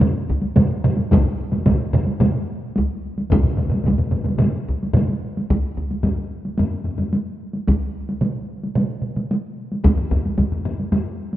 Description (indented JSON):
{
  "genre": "japanese traditional, taiko drum ensemble",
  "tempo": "110 BPM",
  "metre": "4/4",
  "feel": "straight",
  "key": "none",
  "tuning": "none",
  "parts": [
    { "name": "solo taiko drums", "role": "percussion", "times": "0.0-11.4 s", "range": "none", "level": "-23 LUFS", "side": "right 1 dB", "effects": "none" },
    { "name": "solo taiko drums", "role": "percussion", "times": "0.0-9.3 s", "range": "none", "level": "-23 LUFS", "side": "right 2 dB", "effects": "none" },
    { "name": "taiko ensemble", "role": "percussion", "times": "0.0-11.0 s", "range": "none", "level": "-23 LUFS", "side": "left 2 dB", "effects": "none" },
    { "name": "taiko ensemble", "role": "percussion", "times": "0.3-10.5 s", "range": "none", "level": "-22 LUFS", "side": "equal", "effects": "none" }
  ],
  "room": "moderate lush hall reverb, RT60 2.4 s",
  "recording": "rough home demo mix",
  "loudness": "-18 LUFS",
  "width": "side -14 dB against mid",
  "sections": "0.0-5.5 A section; 5.5-11.4 B section",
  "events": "none",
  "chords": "none"
}